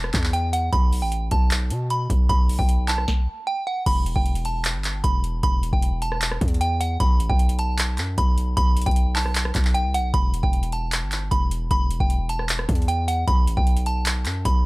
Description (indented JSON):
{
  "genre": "hip hop, trap",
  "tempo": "153 BPM",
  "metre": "4/4",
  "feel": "half-time",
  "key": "E minor",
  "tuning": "A4 = 440 Hz",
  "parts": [
    { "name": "delicate synth tine bell", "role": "melody", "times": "0.0-14.7 s", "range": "F#5 to B5", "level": "-27 LUFS", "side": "right 1 dB", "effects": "chorus" },
    { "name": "hard-hitting 808-style bass", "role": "bass", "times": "0.0-14.7 s", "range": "E1 to B2", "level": "-24 LUFS", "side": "equal", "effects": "none" },
    { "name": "booming analog drum machine", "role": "drums", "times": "0.0-14.6 s", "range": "crash cymbal, handclaps, hi-hat, kick drum, rim click, snare drum", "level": "-22 LUFS", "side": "equal", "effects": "none" }
  ],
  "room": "little or no reverb",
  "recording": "dry, gritty hardware recording",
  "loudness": "-20 LUFS",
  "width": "side -22 dB against mid",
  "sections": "0.0-3.9 A section; 3.9-14.7 B section",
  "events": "stop 3.1-3.9",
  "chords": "0.0 E5; 0.7 Gadd9/A; 3.9 Em; 7.0 B5; 10.1 Em; 13.3 B5"
}